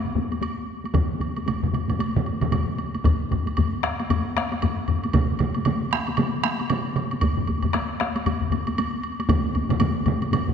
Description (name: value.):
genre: japanese traditional, taiko drum ensemble.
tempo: 115 BPM.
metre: 4/4.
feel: swing 60% on 16ths.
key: none.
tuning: none.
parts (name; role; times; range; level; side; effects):
taiko ensemble; percussion; 0.1-10.5 s; none; -26 LUFS; left 4 dB; none.
taiko ensemble; percussion; 0.2-10.5 s; none; -28 LUFS; left 1 dB; none.
woodblock; percussion; 0.3-10.5 s; none; -32 LUFS; right 4 dB; none.
solo taiko drums; percussion; 0.9-10.5 s; none; -26 LUFS; right 5 dB; none.
solo taiko drums; percussion; 0.9-9.7 s; none; -27 LUFS; right 1 dB; none.
room: wet concert hall reverb, RT60 2.0 s.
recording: none.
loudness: -22 LUFS.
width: side -7 dB against mid.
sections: 0.0-10.5 A section.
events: none.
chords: none.